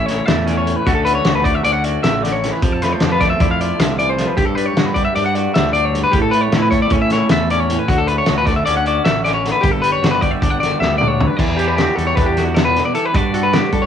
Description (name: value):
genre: math rock and midwest emo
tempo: 308 BPM (eighths)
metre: 9/8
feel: straight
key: G lydian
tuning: A4 = 442 Hz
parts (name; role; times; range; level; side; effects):
- twangy electric guitar; accompaniment; 0.0-13.9 s; G2 to B4; -22 LUFS; right 9 dB; cassette tape
- clean electric guitar; arpeggios; 0.0-13.9 s; F#4 to F#5; -18 LUFS; left 3 dB; cassette tape
- fuzz fingered electric bass; bass; 0.0-13.9 s; G1 to G3; -20 LUFS; left 1 dB; overdrive
- loose indie drum kit; drums; 0.1-13.8 s; crash cymbal, hi-hat, kick drum, snare drum, toms; -19 LUFS; left 1 dB; cassette tape
room: light reverb, studio reverb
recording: home recording on cassette, small room ambience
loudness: -14 LUFS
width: side -8 dB against mid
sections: 0.0-11.4 A section; 11.4-13.9 B section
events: drum fill 10.8-11.4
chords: 0.0 A; 0.9 Dmaj9; 2.6 Fmaj7; 4.4 Gmaj7; 6.1 A7; 7.9 Dmaj9; 9.6 Gmaj7; 11.4 Em9; 13.1 Gmaj9